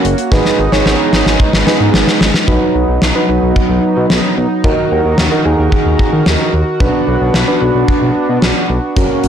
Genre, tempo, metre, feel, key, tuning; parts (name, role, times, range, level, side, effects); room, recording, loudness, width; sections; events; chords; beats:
synth-pop; 111 BPM; 4/4; straight; A4 = 440 Hz
soft electric-piano-like synth keys; accompaniment; 0.0-9.3 s; C#4 to C#5; -16 LUFS; right 2 dB; chorus
chorused pulse-width pad; sustained chords; 0.0-9.3 s; D#3 to A#4; -17 LUFS; equal
smooth synth bass; bass; 0.0-9.3 s; F#1 to D#3; -16 LUFS; equal
gated 80s drum kit; drums; 0.0-9.3 s; hi-hat, kick drum, snare drum; -14 LUFS; left 1 dB
moderate digital room reverb, RT60 1.1 s, studio reverb; blown-out, overdriven recording, overdrive; -10 LUFS; side -8 dB against mid
0.0-2.5 A section; 2.5-9.3 B section
drum fill 0.3-2.5
0.3 G#m; 2.5 B; 4.6 D#m; 6.8 Bm
| 0.32 0.86 1.40 1.94 | 2.48 3.02 3.56 4.10 | 4.64 5.18 5.72 6.26 | 6.80 7.34 7.88 8.43 | 8.96